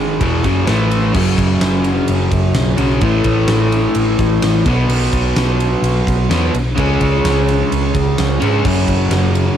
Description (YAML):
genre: hard rock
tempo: 128 BPM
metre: 4/4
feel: straight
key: F# minor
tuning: A4 = 440 Hz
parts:
  - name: overdriven semi-hollow guitar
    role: riff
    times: 0.0-9.6 s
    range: E2 to C#4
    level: -15 LUFS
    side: equal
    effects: cassette tape
  - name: hollow-body short-scale picked electric bass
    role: bass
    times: 0.0-9.5 s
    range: E1 to G#2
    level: -18 LUFS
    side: equal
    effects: none
  - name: huge arena drum kit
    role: drums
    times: 0.2-9.5 s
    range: crash cymbal, kick drum, ride cymbal, snare drum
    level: -20 LUFS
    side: equal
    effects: none
room: light reverb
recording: home recording on cassette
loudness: -12 LUFS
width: side -9 dB against mid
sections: 0.0-1.1 A section; 1.1-9.6 B section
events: none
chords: 0.2 F#5; 0.7 A5; 1.1 F#5; 3.0 A5; 4.7 B5; 6.8 C#5; 8.6 F#5